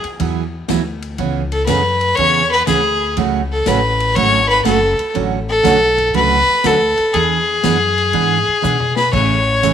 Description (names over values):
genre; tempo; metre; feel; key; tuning
country, western swing; 121 BPM; 4/4; swing 68% on 8ths; unclear; A4 = 440 Hz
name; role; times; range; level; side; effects
clear fiddle; melody; 0.0-9.7 s; G#4 to C#5; -14 LUFS; left 1 dB; slapback echo
upright bass; bass; 0.0-9.7 s; F#1 to B2; -22 LUFS; left 2 dB; none
swinging big-band drum kit; drums; 0.0-9.7 s; crash cymbal, hi-hat, kick drum, ride cymbal, snare drum, toms; -28 LUFS; left 10 dB; none
picked steel-string acoustic guitar; accompaniment; 0.2-9.7 s; C#3 to G#4; -20 LUFS; right 10 dB; none
room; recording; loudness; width
moderate spring reverb, RT60 2.6 s; 1960s-style stereo with parts hard left and right; -13 LUFS; side -8 dB against mid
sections
0.0-9.1 A section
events
drum fill 8.6-9.1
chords
0.0 Eadd9; 1.2 C#m7; 3.2 F#m; 5.2 Dmaj7; 7.1 E7; 9.1 Amaj7